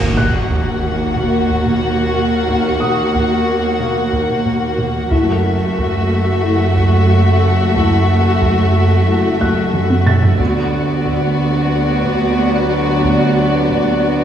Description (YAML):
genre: cinematic, suspense film score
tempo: 91 BPM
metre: 4/4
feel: straight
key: Eb harmonic minor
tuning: A4 = 440 Hz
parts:
  - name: dark studio violin section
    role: melody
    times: 0.0-14.2 s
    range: D5 to Gb5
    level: -25 LUFS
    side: left 5 dB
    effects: none
  - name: warm chamber violin section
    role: second line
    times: 0.0-14.2 s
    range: Gb4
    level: -21 LUFS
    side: left 3 dB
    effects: none
  - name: rich studio viola section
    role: accompaniment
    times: 0.0-14.2 s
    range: A3 to B3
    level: -21 LUFS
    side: equal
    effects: none
  - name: granular cloud pad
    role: sustained chords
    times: 0.0-14.2 s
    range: Gb4 to Gb5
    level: -25 LUFS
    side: equal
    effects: built-in reverb
  - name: mellow French horn section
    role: sustained chords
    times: 0.0-14.2 s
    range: F#3 to Gb4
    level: -22 LUFS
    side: left 2 dB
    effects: none
  - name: rich studio double bass section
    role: bass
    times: 0.0-14.2 s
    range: Gb1 to Eb2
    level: -21 LUFS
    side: right 3 dB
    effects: none
  - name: warm studio cello section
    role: bass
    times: 0.0-14.2 s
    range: D2 to Gb2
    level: -19 LUFS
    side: right 2 dB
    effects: none
  - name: timpani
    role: percussion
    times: 0.0-0.8 s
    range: Eb3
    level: -28 LUFS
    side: right 1 dB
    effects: none
  - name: impact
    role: sound effects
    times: 0.0-2.5 s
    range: none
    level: -28 LUFS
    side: right 1 dB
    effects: none
  - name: taiko ensemble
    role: drums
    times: 0.2-14.2 s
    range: none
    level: -22 LUFS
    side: right 1 dB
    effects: none
  - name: felt-muted upright piano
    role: texture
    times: 0.2-5.1, 9.4-14.2 s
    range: Gb5 to A6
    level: -26 LUFS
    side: right 1 dB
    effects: none
room: moderate scoring stage reverb, RT60 1.9 s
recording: studio reverb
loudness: -13 LUFS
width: side -9 dB against mid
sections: 0.0-14.2 A section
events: impact 0.0-2.5; drum fill 9.7-10.4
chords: 0.0 Ebm; 5.1 Gbm7; 10.4 D6